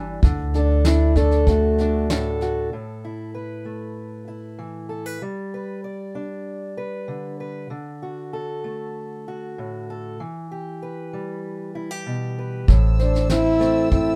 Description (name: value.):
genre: acoustic folk duo or small band.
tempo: 96 BPM.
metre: 4/4.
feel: straight.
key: A dorian.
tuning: A4 = 439 Hz.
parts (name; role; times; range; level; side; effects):
warm French horn; melody; 0.0-2.4, 13.0-14.2 s; A3 to E4; -24 LUFS; equal; none.
fingerpicked acoustic archtop guitar; accompaniment; 0.0-14.2 s; A2 to D5; -29 LUFS; equal; none.
upright bass; bass; 0.0-2.7, 12.7-14.2 s; G1 to D2; -22 LUFS; equal; none.
soft brush drum kit; drums; 0.2-2.5, 12.7-14.1 s; kick drum, snare drum; -23 LUFS; equal; none.
dark chamber string section; sustained chords; 12.7-14.2 s; C5 to E6; -38 LUFS; equal; none.
room: light reverb.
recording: none.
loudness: -23 LUFS.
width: mono.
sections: 0.0-2.7 A section; 2.7-12.7 B section; 12.7-14.2 A section.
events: none.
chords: 0.2 D; 2.7 Asus2; 5.2 G; 7.7 D; 10.2 Em; 12.7 Am.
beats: | 0.23 0.85 1.47 2.09 | 2.72 3.34 3.96 4.59 | 5.21 5.83 6.46 7.08 | 7.71 8.33 8.95 9.57 | 10.20 10.82 11.44 12.06 | 12.68 13.30 13.92.